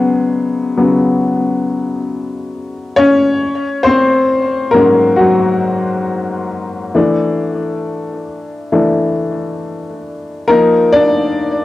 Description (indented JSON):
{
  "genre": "hip hop",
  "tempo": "68 BPM",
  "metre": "4/4",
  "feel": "swing 62% on 16ths",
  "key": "unclear",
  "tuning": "A4 = 442 Hz",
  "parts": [
    { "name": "warm upright piano", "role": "solo", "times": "0.0-11.6 s", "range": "Ab2 to D5", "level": "-12 LUFS", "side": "left 2 dB", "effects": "cassette tape, tape echo" }
  ],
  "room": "wet small room reverb, RT60 0.6 s",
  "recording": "home recording on cassette",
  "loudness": "-12 LUFS",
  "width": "side -16 dB against mid",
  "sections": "0.0-11.6 A section",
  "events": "upright piano solo 0.0-11.6",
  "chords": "0.0 Db7sus4; 3.4 Ab9sus4; 6.9 E7sus4; 10.5 F7sus4"
}